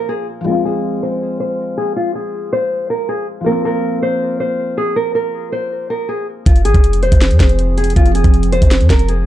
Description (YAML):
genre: hip hop, trap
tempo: 160 BPM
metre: 4/4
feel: half-time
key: F minor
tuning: A4 = 436 Hz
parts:
  - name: nylon-string guitar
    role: melody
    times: 0.0-9.3 s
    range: F4 to C5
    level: -18 LUFS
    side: left 1 dB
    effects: low-pass filter, ping-pong delay
  - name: felt-muted upright piano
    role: accompaniment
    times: 0.0-6.5 s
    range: F3 to F4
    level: -22 LUFS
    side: left 2 dB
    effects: low-pass filter
  - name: dark analog pad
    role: sustained chords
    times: 0.0-0.4, 6.5-9.3 s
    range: F3 to C5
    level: -23 LUFS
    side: right 2 dB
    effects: wide subtle chorus
  - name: warm 808-style bass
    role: bass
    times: 6.5-9.3 s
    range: F1 to F2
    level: -14 LUFS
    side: equal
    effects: none
  - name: trap drum kit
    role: drums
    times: 6.5-9.2 s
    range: hi-hat, kick drum, snare drum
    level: -12 LUFS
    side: equal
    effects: vintage 12-bit sampler grit
room: little or no reverb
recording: dark, warm production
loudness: -13 LUFS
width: side -13 dB against mid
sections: 0.5-6.5 A section; 6.5-9.3 B section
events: break 0.0-0.5; filter sweep 0.5-6.5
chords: 0.5 Fm; 3.5 Bbsus2; 6.5 Fm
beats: 0.09 | 0.46 0.84 1.21 1.59 | 1.96 2.34 2.71 3.09 | 3.46 3.84 4.21 4.59 | 4.96 5.34 5.71 6.09 | 6.46 6.84 7.21 7.59 | 7.96 8.34 8.71 9.09